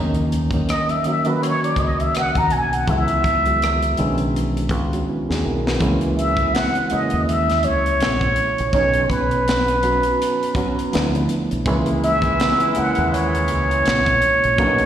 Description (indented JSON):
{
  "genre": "R&B, neo-soul",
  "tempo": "82 BPM",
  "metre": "4/4",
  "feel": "swing 56% on 16ths",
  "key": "C# dorian",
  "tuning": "A4 = 439 Hz",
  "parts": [
    { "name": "bright reed electric piano", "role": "accompaniment", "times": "0.0-14.9 s", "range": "C#3 to B4", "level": "-23 LUFS", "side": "right 1 dB", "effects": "fast tremolo, slapback echo" },
    { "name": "deep dub fingered electric bass", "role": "bass", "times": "0.0-14.9 s", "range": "A#1 to D#2", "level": "-23 LUFS", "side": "equal", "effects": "none" },
    { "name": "tight funk drum kit", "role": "drums", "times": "0.1-14.9 s", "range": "hi-hat, kick drum, rim click, snare drum", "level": "-26 LUFS", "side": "left 1 dB", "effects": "none" },
    { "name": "trumpet with plunger mute", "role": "melody", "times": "0.7-14.9 s", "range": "B4 to A#5", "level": "-19 LUFS", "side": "right 1 dB", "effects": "slapback echo" },
    { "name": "clear horn section", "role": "stabs", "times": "11.7-14.9 s", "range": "A#2 to F#4", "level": "-26 LUFS", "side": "left 1 dB", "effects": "slapback echo" }
  ],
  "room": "light reverb, studio reverb",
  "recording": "live gig heard through the venue's PA, recital hall reverb",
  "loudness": "-17 LUFS",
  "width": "side -10 dB against mid",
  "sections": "0.0-5.8 A section; 5.8-14.9 B section",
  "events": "drum fill 5.1-5.8",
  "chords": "0.0 D#m7; 2.9 C#m11; 5.8 C#m69; 8.7 Badd9; 10.9 Dm69; 11.7 C#m69",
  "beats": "0.68 1.41 2.14 | 2.88 3.61 4.34 5.07 | 5.80 6.53 7.26 8.00 | 8.73 9.46 10.19 10.92 | 11.66 12.39 13.12 13.85 | 14.58"
}